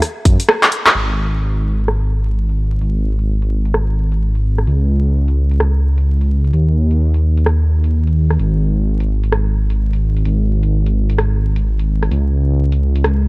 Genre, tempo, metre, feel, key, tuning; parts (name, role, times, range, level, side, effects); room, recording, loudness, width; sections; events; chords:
UK garage, two-step garage; 129 BPM; 4/4; swing 62% on 16ths; A4 = 440 Hz
punchy analog drum machine; drums; 0.0-13.2 s; handclaps, hi-hat, rim click; -15 LUFS; equal; low-pass filter on hats, low-pass filter on perc, low-pass filter on snare
dark detuned saw bass; bass; 0.3-13.3 s; G#1 to F#2; -14 LUFS; equal; tube saturation, sidechain pumping
little or no reverb; dry, gritty hardware recording, vinyl crackle; -13 LUFS; side -26 dB against mid
1.0-13.3 A section
drum fill 0.6-1.0